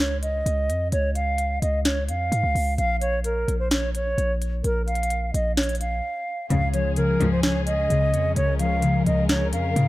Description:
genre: hip hop, trap.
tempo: 129 BPM.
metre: 4/4.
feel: half-time.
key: Db major.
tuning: A4 = 440 Hz.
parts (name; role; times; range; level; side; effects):
hollow concert flute; melody; 0.0-9.9 s; Bb4 to F5; -25 LUFS; right 1 dB; none.
hard-hitting 808-style bass; bass; 0.0-9.9 s; Bb1 to Ab2; -25 LUFS; equal; none.
trap drum kit; drums; 0.2-9.9 s; hi-hat, snare drum; -27 LUFS; equal; none.
concert harp; accompaniment; 6.5-9.9 s; Db3 to Db5; -24 LUFS; left 3 dB; none.
dark symphonic string section; sustained chords; 6.5-9.9 s; F3 to Bb4; -32 LUFS; left 1 dB; none.
warm symphonic string section; stabs; 6.5-7.4 s; Ab1 to F3; -26 LUFS; left 2 dB; none.
room: light reverb, studio reverb.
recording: dark, warm production.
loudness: -21 LUFS.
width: side -17 dB against mid.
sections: 0.0-6.5 A section; 6.5-9.9 B section.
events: break 6.0-6.5.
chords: 0.0 Db; 2.8 Bbm; 6.5 Db.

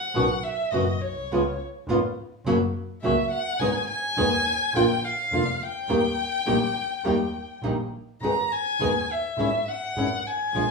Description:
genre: tango.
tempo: 104 BPM.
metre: 4/4.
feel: rubato.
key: G# minor.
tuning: A4 = 442 Hz.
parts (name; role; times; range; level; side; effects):
dark violin; second line; 0.0-10.7 s; C#5 to A#5; -26 LUFS; left 1 dB; none.
flamenco guitar; accompaniment; 0.1-10.6 s; B2 to G#4; -24 LUFS; equal; none.
clear double bass; bass; 0.1-10.7 s; E#1 to D#2; -30 LUFS; right 1 dB; none.
room: wet large studio reverb, RT60 0.8 s.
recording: band playing live in one room, small room reverb.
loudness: -23 LUFS.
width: side -3 dB against mid.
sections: 0.0-10.7 A section.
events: violin solo 0.0-10.7.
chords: 0.1 Badd9; 1.3 C#7; 2.5 F#; 3.6 G#m; 4.8 A#; 5.9 D#; 8.2 G#m; 9.4 C#m/G#.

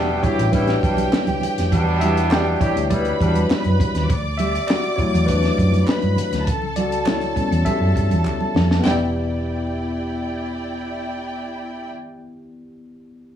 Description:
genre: lush 1970s-style soul.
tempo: 101 BPM.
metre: 4/4.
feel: straight.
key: E dorian.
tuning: A4 = 440 Hz.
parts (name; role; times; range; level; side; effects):
warm studio violin section; second line; 0.0-11.9 s; E4 to D6; -26 LUFS; right 2 dB; none.
tine electric piano; accompaniment; 0.0-13.4 s; F#3 to E5; -24 LUFS; left 2 dB; medium stereo tremolo.
clear horn section; stabs; 0.0-3.4 s; B2 to G4; -25 LUFS; right 2 dB; none.
hollow-body short-scale fingered electric bass; bass; 0.0-11.9 s; E1 to G2; -22 LUFS; equal; none.
congas; percussion; 0.1-9.1 s; none; -29 LUFS; right 5 dB; none.
compact cocktail drum kit; drums; 0.2-9.0 s; hi-hat, kick drum, snare drum; -23 LUFS; equal; none.
group handclap; percussion; 1.1-9.1 s; none; -37 LUFS; right 5 dB; none.
room: light reverb, studio ambience.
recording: small room ambience.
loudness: -17 LUFS.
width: side -10 dB against mid.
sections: 0.0-8.8 A section; 8.8-11.2 B section.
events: tine electric piano solo 0.0-8.8; drum fill 8.3-8.8.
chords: 0.0 Em7; 4.1 D; 6.5 A7/C#; 8.8 Em7.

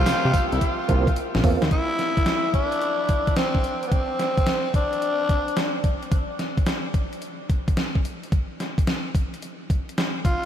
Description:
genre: R&B, new jack swing.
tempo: 109 BPM.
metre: 4/4.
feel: swing 67% on 16ths.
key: unclear.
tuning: A4 = 440 Hz.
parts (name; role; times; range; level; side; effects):
growling tenor saxophone; melody; 0.0-5.8, 10.3-10.5 s; B3 to F4; -25 LUFS; left 1 dB; none.
clear concert grand piano; accompaniment; 0.0-1.7 s; C3 to F4; -36 LUFS; left 2 dB; none.
fat analog bass; bass; 0.0-1.7 s; Bb1 to C3; -22 LUFS; equal; none.
gated 80s digital drum machine; drums; 0.1-10.4 s; hi-hat, kick drum, snare drum, tambourine; -23 LUFS; equal; gated reverb, gated reverb snare, overdrive.
tonewheel organ; stabs; 0.9-1.6 s; Bb3 to F4; -31 LUFS; right 5 dB; chorus vibrato, slow rotary speaker, tape echo.
room: moderate huge ambient reverb, RT60 7.0 s.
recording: dreamy mix soaked in reverb, lossy compression artefacts.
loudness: -21 LUFS.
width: side -10 dB against mid.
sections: 0.0-1.7 A section; 1.7-10.5 B section.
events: drum fill 0.6-1.7.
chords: 0.0 C7sus4; 1.7 N.C..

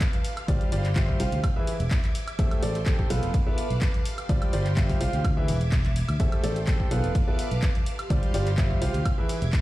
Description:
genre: piano house.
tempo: 126 BPM.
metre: 4/4.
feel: straight.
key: unclear.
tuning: A4 = 440 Hz.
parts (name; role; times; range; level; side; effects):
string machine, violins; sustained chords; 0.0-9.6 s; G4 to G#6; -37 LUFS; right 1 dB; ensemble chorus, vintage 12-bit sampler grit, sidechain pumping.
electronic kick drum; drums; 0.0-9.6 s; none; -25 LUFS; equal; none.
punchy analog drum machine; drums; 0.0-9.6 s; handclaps, hi-hat, woodblock; -36 LUFS; equal; none.
clear grand piano; riff; 0.5-9.4 s; E3 to G5; -31 LUFS; equal; sidechain pumping, tape echo.
fingered electric bass; bass; 0.5-9.5 s; E1 to D2; -27 LUFS; equal; sidechain pumping.
room: little or no reverb.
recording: played on a big sound system in a bare room, stone room reverb.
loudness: -23 LUFS.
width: side -16 dB against mid.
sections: 0.0-9.6 A section.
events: none.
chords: 0.2 G7sus4; 1.4 E7; 2.4 Am7; 3.1 Bm7b5; 4.1 G7sus4; 5.2 E7; 6.2 Am7; 6.9 Bm7b5; 7.9 G7sus4; 9.1 E7.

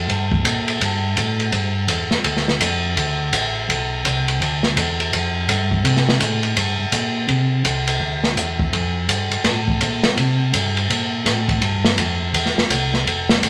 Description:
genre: soul jazz organ trio.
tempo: 166 BPM.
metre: 4/4.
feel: swing 63% on 8ths.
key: C mixolydian.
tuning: A4 = 440 Hz.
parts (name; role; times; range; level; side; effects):
mellow tonewheel organ; bass; 0.0-13.5 s; F1 to C3; -24 LUFS; equal; slow rotary speaker.
open jazz drum kit; drums; 0.1-13.5 s; hi-hat, kick drum, ride cymbal, snare drum; -21 LUFS; equal; none.
room: moderate club reverb, RT60 0.6 s.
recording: none.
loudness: -19 LUFS.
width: mono.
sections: 0.0-7.3 A section; 7.3-13.5 A section.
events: none.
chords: none.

